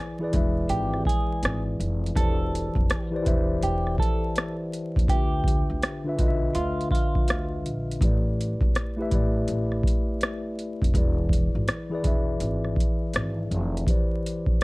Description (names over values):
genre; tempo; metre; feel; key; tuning
lo-fi hip hop; 82 BPM; 4/4; swing 65% on 16ths; unclear; A4 = 440 Hz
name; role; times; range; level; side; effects
semi-hollow electric guitar; melody; 0.0-8.0 s; F4 to A4; -31 LUFS; right 2 dB; phaser, low-pass filter
mellow tine electric piano; accompaniment; 0.0-14.6 s; D3 to E5; -29 LUFS; left 1 dB; slow stereo tremolo, cassette tape, low-pass filter
upright bass; bass; 0.3-13.8 s; E1 to Eb2; -29 LUFS; equal; none
booming analog drum machine; drums; 0.3-14.6 s; hi-hat, kick drum, rim click; -24 LUFS; equal; none
room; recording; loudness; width
little or no reverb; vinyl crackle; -23 LUFS; side -23 dB against mid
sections
0.0-14.6 A section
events
none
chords
0.0 E7; 2.2 Am11/E; 5.1 Dm69; 8.0 A7sus4; 10.9 E7; 13.9 Cmaj9/E